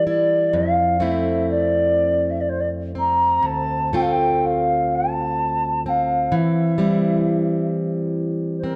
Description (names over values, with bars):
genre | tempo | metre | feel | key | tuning
celtic folk, Celtic slow air | 60-66 BPM | 3/4 | rubato | unclear | A4 = 444 Hz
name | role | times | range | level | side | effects
baroque flute | melody | 0.0-8.8 s | Bb4 to Bb5 | -22 LUFS | equal | none
fingerpicked plugged-in steel-string acoustic guitar | accompaniment | 0.0-8.8 s | D2 to Bb4 | -24 LUFS | equal | none
room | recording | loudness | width
moderate recital hall reverb, RT60 1.8 s | dark, warm production | -20 LUFS | mono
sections
0.0-8.8 A section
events
none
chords
0.0 Edim; 0.5 Fmaj7; 3.4 Dm7; 6.3 C/E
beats
| 0.53 1.48 2.46 | 3.44 4.41 5.38 | 6.31 7.23 8.15